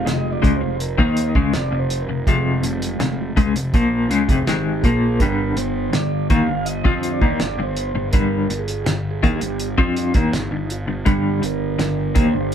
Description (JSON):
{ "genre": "psychedelic rock", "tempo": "82 BPM", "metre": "4/4", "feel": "straight", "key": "unclear", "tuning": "A4 = 445 Hz", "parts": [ { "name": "mellow tonewheel organ", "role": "sustained chords", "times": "0.0-12.5 s", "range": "D3 to F5", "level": "-26 LUFS", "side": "right 4 dB", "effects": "slow rotary speaker" }, { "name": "fuzz picked electric bass", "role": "bass", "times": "0.0-12.5 s", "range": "F1 to F2", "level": "-25 LUFS", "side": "equal", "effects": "overdrive" }, { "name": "clean electric guitar", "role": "riff", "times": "0.1-12.5 s", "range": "F2 to F4", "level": "-21 LUFS", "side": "left 3 dB", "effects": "tremolo" }, { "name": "cloth-damped thuddy drum kit", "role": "drums", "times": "0.1-12.5 s", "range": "hi-hat, kick drum, snare drum", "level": "-20 LUFS", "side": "right 1 dB", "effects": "none" } ], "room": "moderate small room reverb, RT60 0.5 s", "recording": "band playing live in one room", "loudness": "-17 LUFS", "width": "side -8 dB against mid", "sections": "0.0-12.5 A section", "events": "tonewheel organ solo 0.0-12.5", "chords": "0.0 Fmadd9; 5.2 G5" }